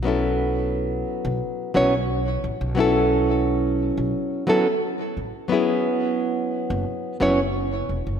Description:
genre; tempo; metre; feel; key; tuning
sunset chillout; 88 BPM; 4/4; straight; unclear; A4 = 441 Hz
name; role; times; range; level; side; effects
nylon-string guitar; accompaniment; 0.0-7.4 s; F#3 to C#5; -21 LUFS; equal; auto-pan, digital delay
upright bass; bass; 0.0-8.2 s; E1 to B1; -27 LUFS; equal; none
room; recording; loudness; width
wet concert hall reverb, RT60 2.1 s; none; -20 LUFS; side -8 dB against mid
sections
0.0-8.2 A section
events
none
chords
0.0 B9sus4; 5.5 F#9sus4

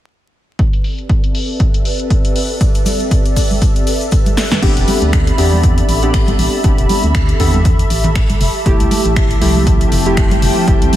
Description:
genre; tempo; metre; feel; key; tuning
deep house; 119 BPM; 4/4; swing 56% on 16ths; A minor; A4 = 440 Hz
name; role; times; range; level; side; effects
hollow soft pad; sustained chords; 0.6-11.0 s; C4 to B5; -22 LUFS; equal; ensemble chorus, sidechain pumping
electronic kick drum; drums; 0.6-10.8 s; none; -14 LUFS; equal; none
house drum kit; drums; 0.6-11.0 s; crash cymbal, finger snaps, hi-hat, snare drum; -22 LUFS; left 1 dB; low-pass filter on hats, low-pass filter on snare, low-pass filter on cymbals
ethereal airy pad; texture; 1.4-11.0 s; F3 to A5; -23 LUFS; equal; ensemble chorus, built-in reverb, sidechain pumping
tube shaker; percussion; 2.6-4.6 s; none; -29 LUFS; left 4 dB; none
congas; percussion; 2.9-11.0 s; none; -23 LUFS; right 2 dB; sidechain pumping on perc
warm analog keys; stabs; 4.6-11.0 s; A3 to A4; -18 LUFS; equal; chorus, sidechain pumping, ping-pong delay
organ-like FM bass; bass; 4.6-10.9 s; E1 to E2; -16 LUFS; equal; tube saturation, sidechain pumping
room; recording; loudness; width
light reverb; vinyl crackle; -11 LUFS; side -13 dB against mid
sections
0.6-4.6 A section; 4.6-11.0 B section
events
filter sweep on drum 0.6-4.6; filter sweep on analog synth pad 0.6-4.6; drum fill 4.4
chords
0.6 Am11; 8.4 Fmaj9

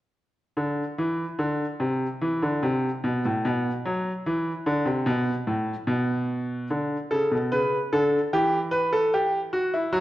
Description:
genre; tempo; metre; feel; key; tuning
classical, baroque-style 3-part fugue for grand piano; 74 BPM; 4/4; straight; unclear; A4 = 440 Hz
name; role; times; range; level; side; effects
bright grand piano; solo; 0.6-10.0 s; A2 to B4; -23 LUFS; equal; none
room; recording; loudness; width
wet recital hall reverb, RT60 1.4 s; worn, warbling old tape, cassette tape, warbly pitch drift; -23 LUFS; side -15 dB against mid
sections
0.1-10.0 A section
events
none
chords
0.1 N.C.; 6.7 D5; 8.3 Em

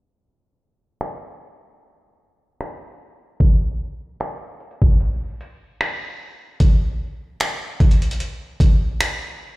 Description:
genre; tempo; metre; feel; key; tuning
R&B; 75 BPM; 4/4; swing 54% on 16ths; none; none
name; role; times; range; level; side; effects
dusty soul sampler-style drum kit; drums; 1.0-9.2 s; finger snaps, hi-hat, kick drum; -17 LUFS; equal; overdrive
room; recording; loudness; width
little or no reverb; played on a big sound system in a bare room, stone room reverb, low-pass filter; -18 LUFS; side -21 dB against mid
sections
0.2-6.6 A section; 6.6-9.6 B section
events
filter sweep 0.2-6.6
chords
none

